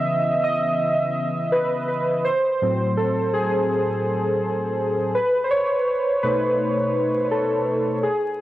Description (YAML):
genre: hip hop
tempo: 83 BPM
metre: 4/4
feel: swing 58% on 16ths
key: unclear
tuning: A4 = 445 Hz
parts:
  - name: warbly lo-fi synth keys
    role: solo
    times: 0.0-8.4 s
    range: A2 to E5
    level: -19 LUFS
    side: equal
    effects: chorus, low-pass filter, cassette tape, tape echo
room: moderate spring reverb, RT60 1.7 s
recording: home recording on cassette, vinyl crackle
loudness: -19 LUFS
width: side -14 dB against mid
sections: 0.0-8.4 A section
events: synth keys solo 0.0-8.4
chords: 0.0 C#m9; 2.3 Am6; 5.1 B9